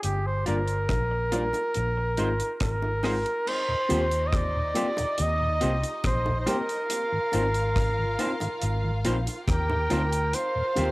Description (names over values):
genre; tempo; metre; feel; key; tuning
lovers rock reggae; 70 BPM; 4/4; straight; Eb major; A4 = 442 Hz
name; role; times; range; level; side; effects
clear flugelhorn; melody; 0.0-10.9 s; G4 to Eb5; -28 LUFS; right 1 dB; cassette tape, tape echo
vintage muted fingered electric bass; bass; 0.0-10.9 s; G1 to Eb2; -28 LUFS; equal; none
deep reggae drum kit; drums; 0.0-10.9 s; crash cymbal, hi-hat, kick drum, rim click; -30 LUFS; equal; cassette tape, analog delay
tine electric piano; accompaniment; 0.5-10.9 s; G3 to Bb4; -34 LUFS; left 2 dB; medium stereo tremolo, cassette tape, analog delay
electric guitar through a small old amp; stabs; 0.5-10.9 s; Eb4 to D5; -35 LUFS; right 1 dB; cassette tape
bongos; percussion; 0.9-10.9 s; none; -39 LUFS; right 1 dB; none
warm studio violin section; second line; 3.5-10.9 s; Eb4 to G5; -38 LUFS; left 1 dB; cassette tape
mellow tonewheel organ; accompaniment; 3.7-10.8 s; Eb2 to F4; -34 LUFS; left 1 dB; slow rotary speaker, cassette tape
room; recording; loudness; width
light reverb, small room reverb; home recording on cassette; -24 LUFS; side -21 dB against mid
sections
0.0-3.5 A section; 3.5-10.9 B section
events
none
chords
0.0 Gm7; 1.7 Bb9sus4; 3.5 Eb69; 6.9 Ab69; 10.3 Eb69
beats
| 0.03 0.89 1.75 2.61 | 3.47 4.32 5.18 6.04 | 6.90 7.76 8.62 9.47 | 10.33